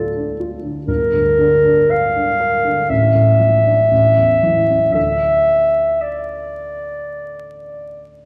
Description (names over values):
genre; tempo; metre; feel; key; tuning
classical, romantic duo for clarinet and grand piano; 57-64 BPM; 4/4; rubato; D minor; A4 = 439 Hz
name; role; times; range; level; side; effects
mellow clarinet; melody; 0.0-8.1 s; A4 to F5; -17 LUFS; equal; none
dark grand piano; accompaniment; 0.0-8.3 s; G1 to Bb4; -21 LUFS; equal; none
room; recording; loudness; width
wet recital hall reverb, RT60 1.5 s; recorded in a church or concert hall, vinyl crackle; -15 LUFS; mono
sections
0.0-8.3 A section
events
none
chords
0.0 Dm; 0.9 Gm; 2.9 Dm/A; 3.9 A; 5.0 Dm